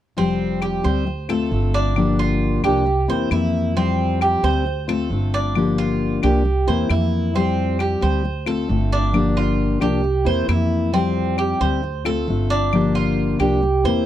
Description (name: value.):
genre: latin, Cuban son and guajira.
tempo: 134 BPM.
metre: 4/4.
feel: straight.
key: F major.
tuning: A4 = 440 Hz.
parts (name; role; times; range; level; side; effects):
fingerpicked steel-string acoustic guitar; accompaniment; 0.2-14.1 s; D3 to G4; -21 LUFS; left 4 dB; none.
Cuban tres; arpeggios; 0.2-14.1 s; C4 to C5; -23 LUFS; right 4 dB; none.
upright bass; bass; 0.2-14.0 s; F1 to F2; -22 LUFS; right 1 dB; none.
claves; percussion; 0.6-13.6 s; none; -28 LUFS; left 18 dB; none.
room: little or no reverb.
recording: dry, close 1970s-style studio recording.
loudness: -17 LUFS.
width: side -12 dB against mid.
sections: 0.2-14.1 A section.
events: none.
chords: 0.2 Fsus2; 1.1 Dm7; 2.0 Gm7; 2.9 C7; 3.8 Fsus2; 4.7 Dm7; 5.6 Gm7; 6.5 C7; 7.4 Fsus2; 8.2 Dm7; 9.1 Gm7; 10.0 C7; 10.9 Fsus2; 11.8 Dm7; 12.7 Gm7.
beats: | 0.18 0.62 1.07 1.52 | 1.97 2.42 2.87 3.32 | 3.76 4.21 4.66 5.11 | 5.56 6.01 6.45 6.90 | 7.35 7.80 8.25 8.70 | 9.14 9.59 10.04 10.49 | 10.94 11.38 11.83 12.28 | 12.73 13.18 13.62.